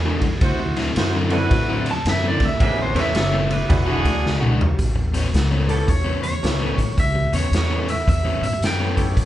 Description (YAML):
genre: electric blues shuffle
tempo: 110 BPM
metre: 4/4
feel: swing 64% on 8ths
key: A mixolydian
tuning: A4 = 440 Hz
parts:
  - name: electric guitar through a small old amp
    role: melody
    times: 0.0-9.3 s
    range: A4 to A5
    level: -25 LUFS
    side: equal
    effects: none
  - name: bright upright piano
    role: accompaniment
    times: 0.0-9.3 s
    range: Bb3 to B4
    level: -29 LUFS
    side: right 2 dB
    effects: none
  - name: upright bass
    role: bass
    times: 0.0-9.3 s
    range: E1 to A2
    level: -23 LUFS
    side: equal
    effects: none
  - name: overdriven semi-hollow guitar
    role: riff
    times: 0.1-9.0 s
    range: A2 to F#4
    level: -27 LUFS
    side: left 2 dB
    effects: none
  - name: raw garage drum kit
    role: drums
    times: 0.2-9.3 s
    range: hi-hat, kick drum, ride cymbal, snare drum, toms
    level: -21 LUFS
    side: equal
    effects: none
  - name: mellow horn section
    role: stabs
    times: 0.4-4.6 s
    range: C#4 to C5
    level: -26 LUFS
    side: right 1 dB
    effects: none
room: light reverb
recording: band playing live in one room, nothing above 10.8 kHz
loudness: -17 LUFS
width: side -13 dB against mid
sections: 0.0-4.8 A section; 4.8-9.3 B section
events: clean electric guitar solo 0.0-4.8; drum fill 4.2-4.8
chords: 0.4 D9; 2.6 A9; 3.7 E9; 4.8 A9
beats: | 0.42 0.97 1.51 2.06 | 2.60 3.15 3.70 4.24 | 4.79 5.34 5.88 6.43 | 6.98 7.53 8.07 8.62 | 9.17